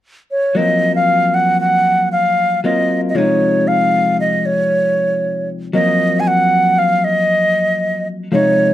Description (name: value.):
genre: progressive instrumental, progressive.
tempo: 116 BPM.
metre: 5/4.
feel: straight.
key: Eb dorian.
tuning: A4 = 440 Hz.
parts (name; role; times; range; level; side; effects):
wooden flute; melody; 0.3-8.7 s; Db5 to Ab5; -14 LUFS; right 1 dB; none.
vintage hollow-body jazz guitar; accompaniment; 0.5-8.7 s; C3 to F4; -18 LUFS; left 2 dB; none.
room: moderate studio reverb, RT60 0.7 s.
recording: dark, warm production.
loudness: -13 LUFS.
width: side -13 dB against mid.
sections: 0.6-8.7 A section.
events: none.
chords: 0.0 N.C.; 0.6 Ebm69/F; 3.2 Dbmaj9; 5.8 Ebm69.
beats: 0.05 | 0.57 1.09 1.61 2.13 2.65 | 3.16 3.68 4.20 4.72 5.24 | 5.75 6.27 6.78 7.30 7.81 | 8.33.